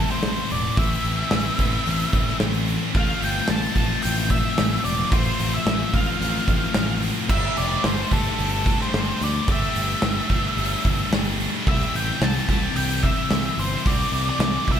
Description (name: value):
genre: quiet-loud alternative rock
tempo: 110 BPM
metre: 4/4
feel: straight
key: unclear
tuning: A4 = 440 Hz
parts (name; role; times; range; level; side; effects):
- octave-fuzz lead guitar; melody; 0.0-14.8 s; A4 to A5; -27 LUFS; equal; distortion
- scooped high-gain guitar; riff; 0.0-14.8 s; A2 to G4; -27 LUFS; left 9 dB; distortion, slapback echo
- scooped high-gain guitar; riff; 0.0-14.8 s; A2 to G4; -29 LUFS; right 13 dB; distortion, slapback echo
- growling fingered electric bass; bass; 0.0-14.8 s; E1 to D2; -27 LUFS; right 1 dB; overdrive
- big rock drum kit; drums; 0.1-14.8 s; crash cymbal, hi-hat, kick drum, snare drum; -24 LUFS; right 1 dB; none
room: light reverb, small room reverb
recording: none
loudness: -20 LUFS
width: side -9 dB against mid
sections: 0.0-14.8 A section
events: none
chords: 0.0 Am; 3.0 F; 7.3 Gsus2; 11.7 C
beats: 0.24 | 0.79 1.33 1.87 2.41 | 2.96 3.50 4.04 4.58 | 5.13 5.67 6.22 6.76 | 7.30 7.85 8.39 8.94 | 9.49 10.03 10.58 11.12 | 11.67 12.22 12.77 13.31 | 13.86 14.41